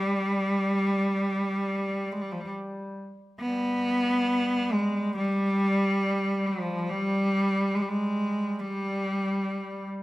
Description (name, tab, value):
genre	caucasian folk, Caucasian lament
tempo	69 BPM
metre	4/4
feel	rubato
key	unclear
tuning	A4 = 439 Hz
part	bright cello	melody	0.0-9.9 s	F3 to B3	-25 LUFS	equal	none
part	clear duduk	drone	0.0-10.0 s	G3	-36 LUFS	equal	none
room	moderate recital hall reverb, RT60 1.6 s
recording	none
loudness	-25 LUFS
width	side -17 dB against mid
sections	0.0-3.4 A section; 3.4-10.0 B section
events	none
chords	none